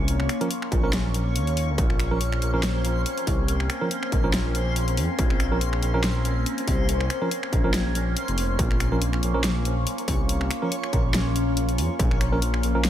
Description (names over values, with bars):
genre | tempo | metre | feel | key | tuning
deep dubstep | 141 BPM | 4/4 | swing 55% on 16ths, half-time | Bb minor | A4 = 440 Hz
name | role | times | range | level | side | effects
overtone-sweeping drone | sustained chords | 0.0-12.9 s | Bb3 to F4 | -30 LUFS | left 1 dB | chorus, built-in reverb, phaser
dark detuned saw bass | bass | 0.0-12.9 s | F1 to F2 | -25 LUFS | equal | none
backwards swelling texture | texture | 0.0-12.9 s | Db4 to Db5 | -34 LUFS | left 2 dB | built-in reverb
dubstep drum kit | drums | 0.1-12.9 s | finger snaps, hi-hat, snare drum | -30 LUFS | left 1 dB | none
tine electric piano | stabs | 0.4-12.8 s | F3 to Bb4 | -31 LUFS | right 3 dB | vintage 12-bit sampler grit, dub echo
electronic kick drum | drums | 0.7-12.1 s | none | -25 LUFS | equal | distortion
room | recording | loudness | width
digital ambience | none | -22 LUFS | side -11 dB against mid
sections
0.0-12.9 A section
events
kick drops out 8.2-8.6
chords
0.0 Bbm